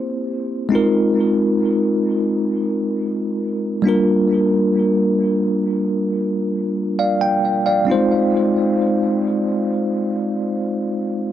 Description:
R&B; free time; F dorian; A4 = 441 Hz
bell-like tine electric piano; solo; 0.0-11.3 s; G3 to G5; -16 LUFS; equal; medium stereo tremolo, dub echo
moderate spring reverb, RT60 1.6 s, digital ambience; echo-heavy mix; -16 LUFS; side -11 dB against mid
0.0-11.3 A section
0.0 C7; 0.7 Bb9sus4; 3.8 Gm7; 7.9 Fm7

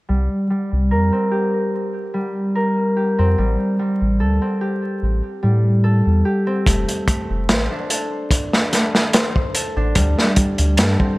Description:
trip hop; 73 BPM; 4/4; swing 53% on 16ths; A4 = 439 Hz
concert harp; arpeggios; 0.1-11.2 s; G3 to C5; -20 LUFS; equal; low-pass filter, digital delay
soft dub sub bass; bass; 0.1-11.0 s; F1 to A2; -17 LUFS; equal
crunchy breakbeat drum kit; drums; 6.7-11.2 s; hi-hat, kick drum, snare drum; -17 LUFS; equal
light reverb, studio reverb; vinyl crackle; -16 LUFS; side -21 dB against mid
0.1-11.2 A section
filter sweep on harp 0.1-11.2
0.1 C7(no3); 3.4 Am7; 6.7 F6; 10.0 D7sus4

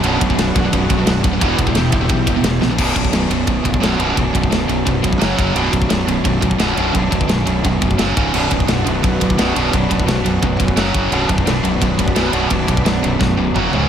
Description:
heavy metal; 173 BPM; 4/4; straight; B minor; A4 = 441 Hz
lush unison pad; sustained chords; 0.0-2.8, 8.3-13.9 s; B3 to C#6; -27 LUFS; left 1 dB; chorus
cranked stack guitar; riff; 0.0-13.5 s; B1 to E4; -21 LUFS; right 1 dB; overdrive
high-gain distorted guitar; riff; 0.0-13.9 s; B1 to F#3; -20 LUFS; right 8 dB; distortion
scooped high-gain guitar; riff; 0.0-13.9 s; B1 to F#3; -22 LUFS; left 9 dB; distortion
fuzz fingered electric bass; bass; 0.0-13.9 s; B0 to B1; -22 LUFS; left 1 dB; overdrive
tight metal drum kit; drums; 0.0-13.8 s; crash cymbal, kick drum, ride cymbal, snare drum, toms; -20 LUFS; left 1 dB
small room ambience; -14 LUFS; side -9 dB against mid
0.0-2.8 A section; 2.8-13.9 B section
drum fill 2.6, 13.2-13.9
0.0 Bm; 1.4 Em; 2.8 Bm; 5.2 F#5; 5.6 Bm; 8.0 F#5; 8.2 C#5; 8.3 Bm; 10.8 F#5; 11.1 Bm; 13.5 F#5; 13.7 C#5

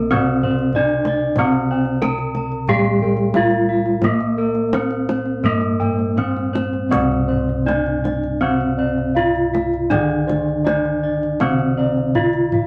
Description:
Javanese gamelan; 80-94 BPM; 4/4; straight; C slendro; A4 = 441 Hz
gamelan-type bronze metallophone; melody; 0.0-12.7 s; Bb3-45c to Bb4-45c; -22 LUFS; equal
gamelan-type bronze metallophone; accompaniment; 0.0-12.7 s; C3 to Bb3-45c; -26 LUFS; equal
gamelan-type bronze metallophone; arpeggios; 0.0-12.7 s; Bb4-45c to Bb5-45c; -29 LUFS; equal
gamelan-type bossed gongs; bass; 0.0-12.7 s; C2 to Bb4-45c; -28 LUFS; equal
gamelan-type bossed gongs; arpeggios; 0.1-12.6 s; Bb4-45c to Bb5-45c; -28 LUFS; equal
kendang; percussion; 0.1-12.7 s; -28 LUFS; equal
moderate studio reverb, RT60 0.5 s; -19 LUFS; mono
0.0-6.9 A section; 6.9-12.7 B section

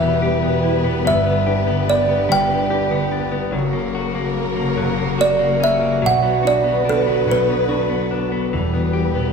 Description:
six-eight pop ballad; 48 BPM (dotted quarters); 6/8; straight; B minor; A4 = 440 Hz
kalimba; melody; 0.0-8.2 s; A4 to G5; -19 LUFS; right 2 dB
warm concert grand piano; accompaniment; 0.0-9.3 s; E1 to D4; -22 LUFS; equal
warm studio string section; sustained chords; 0.0-9.3 s; C#3 to B4; -22 LUFS; left 1 dB
direct-recorded clean electric guitar; arpeggios; 0.0-9.3 s; E3 to G4; -26 LUFS; left 4 dB
wet large studio reverb, RT60 1.1 s; band playing live in one room; -16 LUFS; side -5 dB against mid
0.0-8.5 A section
0.0 Em; 1.1 G; 3.5 F#; 6.0 Bm; 8.5 Em

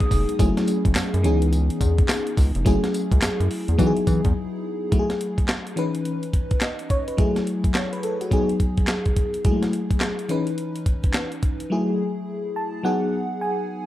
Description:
R&B, new jack swing; 106 BPM; 4/4; swing 62% on 16ths; F# dorian; A4 = 441 Hz
FM electric piano with soft pad layer; accompaniment; 0.0-13.9 s; E3 to D#6; -23 LUFS; left 1 dB; chorus, tremolo
breakbeat sampler-style drum kit; drums; 0.0-11.7 s; handclaps, hi-hat, kick drum, snare drum, tambourine; -22 LUFS; equal
round analog bass; bass; 0.1-4.3 s; E#1 to E3; -21 LUFS; equal
light reverb, digital ambience; -20 LUFS; side -14 dB against mid
0.0-4.9 A section; 4.9-13.9 B section
FM electric piano fill 0.0-0.4, 12.3-13.9; break 4.4-4.9
0.4 F#m9; 1.2 C#m9; 2.7 F#m9; 3.8 Emaj9; 4.9 F#m9; 5.8 C#m9; 7.2 F#m9; 8.3 G#m7; 9.4 F#m9; 10.3 C#m9; 11.7 F#m9; 12.8 G#m7

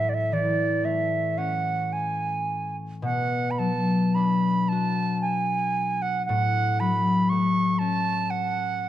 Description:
celtic folk, Celtic slow air; 54-60 BPM; 3/4; rubato; A4 = 436 Hz
bright wooden flute; melody; 0.0-8.9 s; D5 to C#6; -26 LUFS; right 3 dB
concert harp; accompaniment; 0.0-8.9 s; A2 to F#4; -25 LUFS; left 3 dB
wet recital hall reverb, RT60 1.9 s; dark, warm production; -22 LUFS; side -12 dB against mid
0.0-8.9 A section
0.0 A; 3.0 Bm; 6.3 F#m/A

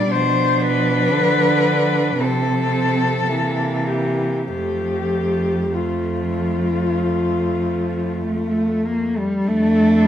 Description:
classical, lyrical piece for cello ensemble; 47-59 BPM; 4/4; rubato; F major; A4 = 440 Hz
dark cello; melody; 0.0-10.1 s; F4 to D5; -21 LUFS; left 4 dB
rich cello; second line; 0.0-10.1 s; A3 to D4; -26 LUFS; right 7 dB
warm cello; accompaniment; 0.0-10.1 s; E3 to Bb3; -22 LUFS; left 1 dB
rich cello; bass; 0.0-10.1 s; F2 to D3; -23 LUFS; right 2 dB
moderate recital hall reverb, RT60 1.6 s; close, detailed microphones; -17 LUFS; side -10 dB against mid
0.0-9.5 A section
0.1 Bdim; 2.2 F/C; 3.3 C7; 4.5 F

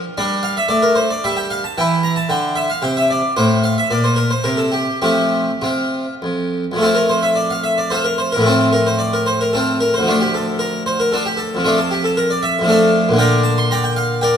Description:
classical, baroque-style suite movement for harpsichord; 100-120 BPM; 3/4; rubato; F major; A4 = 443 Hz
harpsichord; solo; 0.0-14.4 s; D2 to C6; -14 LUFS; equal
moderate concert hall reverb, RT60 2.3 s; -14 LUFS; side -8 dB against mid
0.0-6.8 A section; 6.8-14.4 B section
0.2 G5; 1.8 C; 3.3 F/A; 3.9 N.C.; 5.0 F; 8.4 F/A; 10.1 Dm; 11.6 Dm/F; 13.2 Gm/Bb

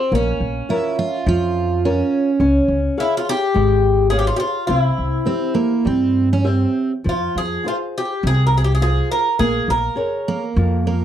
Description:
fado-style ballad; 104 BPM; 4/4; rubato; A4 = 442 Hz
Irish bouzouki; melody; 0.0-10.5 s; C4 to Bb4; -21 LUFS; left 2 dB; slapback echo
flamenco guitar; accompaniment; 0.1-11.0 s; C3 to F5; -23 LUFS; left 1 dB
upright bass; bass; 0.1-11.0 s; Ab1 to G2; -19 LUFS; equal
picked twelve-string acoustic guitar; second line; 0.7-11.0 s; Bb3 to F4; -19 LUFS; right 4 dB
little or no reverb; dry, close 1970s-style studio recording; -16 LUFS; side -10 dB against mid
0.0-11.0 A section
0.1 Bbm; 2.4 Db; 4.7 C; 7.1 Fm; 9.4 Bbm7

